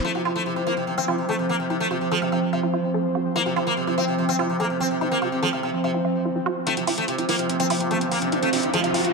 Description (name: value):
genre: psychedelic trance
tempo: 145 BPM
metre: 4/4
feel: straight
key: unclear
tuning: A4 = 439 Hz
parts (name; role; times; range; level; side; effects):
- sitar; melody; 0.0-9.0 s; C3 to C4; -25 LUFS; left 1 dB; phaser, tape echo
- pulsing gated texture; sustained chords; 0.0-9.1 s; F3 to C4; -26 LUFS; right 3 dB; chorus, built-in reverb
- wide unison pluck; riff; 0.0-9.0 s; E4 to F5; -29 LUFS; moving between left 2 dB and right 4 dB; auto-pan, ping-pong delay
- airy breathy pad; texture; 0.0-9.1 s; F3 to F5; -29 LUFS; equal; chorus
- electronic hi-hat; drums; 6.7-9.1 s; none; -31 LUFS; left 1 dB; low-pass filter on hats, low-pass filter on cymbals, low-pass filter on snare, low-pass filter on room
- riser; sound effects; 7.6-9.1 s; none; -28 LUFS; left 2 dB; none
room: wet lush hall reverb, RT60 1.9 s, digital ambience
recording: none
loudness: -21 LUFS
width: side -3 dB against mid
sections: 0.0-6.7 A section; 6.7-9.1 B section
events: filter sweep on synth arpeggio sound 0.0-6.7; filter sweep on synth texture 0.0-6.7; build-up 6.7-9.1; riser 7.6-9.1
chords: 0.0 F5